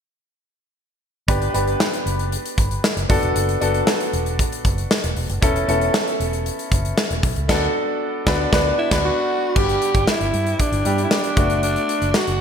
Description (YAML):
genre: 1980s-style pop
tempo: 116 BPM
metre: 4/4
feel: straight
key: D major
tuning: A4 = 440 Hz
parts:
  - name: clear concert grand piano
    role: accompaniment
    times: 1.3-12.4 s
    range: G3 to B4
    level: -22 LUFS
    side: left 1 dB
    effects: none
  - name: vintage muted fingered electric bass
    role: bass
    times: 1.3-12.4 s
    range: E1 to G2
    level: -24 LUFS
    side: equal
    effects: none
  - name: modern studio drum kit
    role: drums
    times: 1.3-12.4 s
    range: crash cymbal, hi-hat, kick drum, snare drum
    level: -21 LUFS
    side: equal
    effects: gated reverb
  - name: raspy alto saxophone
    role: melody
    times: 8.8-12.4 s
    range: D4 to G4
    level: -21 LUFS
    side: equal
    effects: ping-pong delay
room: moderate lush hall reverb, RT60 1.9 s, small room ambience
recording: bright 1980s-style digital production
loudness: -17 LUFS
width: side -7 dB against mid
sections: 1.3-9.6 A section; 9.6-12.4 B section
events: band accent 7.5-9.6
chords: 1.3 G; 3.1 D6; 5.4 Aadd9/E; 7.5 D6; 9.6 G; 11.4 D6/F#